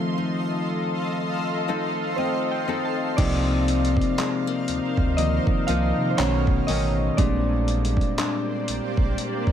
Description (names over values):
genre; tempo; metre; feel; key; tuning
contemporary R&B; 60 BPM; 4/4; swing 58% on 16ths; C minor; A4 = 440 Hz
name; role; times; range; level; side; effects
soft electric-piano-like synth keys; accompaniment; 0.0-9.5 s; Eb3 to A5; -26 LUFS; right 1 dB; chorus
granular cloud pad; sustained chords; 0.0-9.5 s; Bb3 to C6; -29 LUFS; equal; built-in reverb, sidechain pumping
nylon-string guitar; arpeggios; 0.0-9.5 s; Bb2 to A4; -28 LUFS; left 5 dB; ping-pong delay
small celesta; texture; 0.0-3.6 s; G5 to A5; -42 LUFS; right 1 dB; none
sub bass with octave; bass; 3.2-9.2 s; A1 to C3; -25 LUFS; equal; none
dusty soul sampler-style drum kit; drums; 3.2-9.5 s; crash cymbal, handclaps, hi-hat, kick drum; -25 LUFS; equal; overdrive
room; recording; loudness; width
light reverb; none; -21 LUFS; side -9 dB against mid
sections
0.0-3.2 A section; 3.2-9.5 A section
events
break 0.0-3.2; synth keys fill 1.7-3.2; synth keys solo 3.2-9.5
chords
0.0 F7; 3.2 Cm11; 6.2 B9; 7.2 Bb13